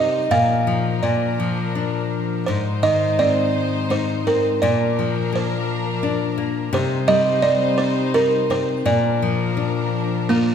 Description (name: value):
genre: children's music, lullaby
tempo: 84 BPM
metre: 3/4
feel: rubato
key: unclear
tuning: A4 = 441 Hz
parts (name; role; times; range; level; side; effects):
- buzzing kalimba; melody; 0.0-10.5 s; Bb3 to F5; -20 LUFS; right 4 dB; none
- nylon-string guitar; accompaniment; 0.0-10.5 s; Ab2 to G4; -21 LUFS; left 4 dB; none
- warm chamber string section; sustained chords; 0.0-10.5 s; F3 to C5; -28 LUFS; left 1 dB; none
room: wet recital hall reverb, RT60 1.4 s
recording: recorded in a church or concert hall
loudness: -18 LUFS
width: side -8 dB against mid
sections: 0.0-10.5 A section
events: none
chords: 0.3 Bbsus4; 1.0 Bb; 2.5 Ab; 4.6 Bb; 6.7 Cm; 8.9 Bb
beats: | 0.30 1.02 1.74 | 2.47 3.20 3.91 | 4.62 5.33 6.04 | 6.74 7.44 8.14 | 8.86 9.57 10.30